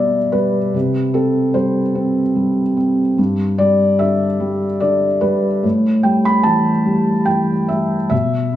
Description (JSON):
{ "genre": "neoclassical minimalist piano", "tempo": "73 BPM", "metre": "3/4", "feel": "rubato", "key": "unclear", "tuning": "A4 = 440 Hz", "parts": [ { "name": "felt-muted upright piano", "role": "solo", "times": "0.0-8.6 s", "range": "G2 to B5", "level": "-14 LUFS", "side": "equal", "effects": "none" } ], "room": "wet recital hall reverb, RT60 1.4 s", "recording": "small room ambience", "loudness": "-14 LUFS", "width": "side -12 dB against mid", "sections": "0.0-8.6 A section", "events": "none", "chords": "0.0 Em/B; 0.7 C5; 3.2 G5; 5.6 A5", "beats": "| 0.74 1.56 2.37 | 3.18 4.00 4.82 | 5.64 6.46 7.28 | 8.11" }